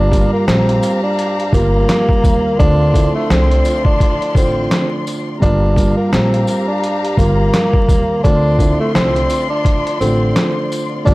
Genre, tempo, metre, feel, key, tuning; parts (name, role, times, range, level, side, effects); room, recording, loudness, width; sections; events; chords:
hip hop, boom-bap hip-hop; 85 BPM; 4/4; swing 58% on 16ths; G dorian; A4 = 440 Hz
breathy tenor saxophone; melody; 0.0-11.1 s; A3 to D4; -18 LUFS; equal; high-pass filter, low-pass filter, tape echo
dark grand piano; accompaniment; 0.0-11.1 s; G2 to F4; -20 LUFS; right 1 dB; high-pass filter, low-pass filter
warm symphonic string section; sustained chords; 0.0-11.1 s; F3 to C6; -24 LUFS; left 2 dB; high-pass filter, low-pass filter
upright bass; bass; 0.0-11.1 s; G1 to Eb2; -17 LUFS; equal
trip hop sampler-style drum kit; drums; 0.1-11.1 s; handclaps, hi-hat, kick drum, snare drum; -15 LUFS; equal
tambourine; percussion; 0.1-10.9 s; -36 LUFS; left 3 dB
little or no reverb; dry, gritty hardware recording, vinyl crackle; -12 LUFS; side -20 dB against mid
0.0-11.1 A section
0.0 Gm7; 2.6 Dm7; 5.4 Gm7; 8.2 Dm7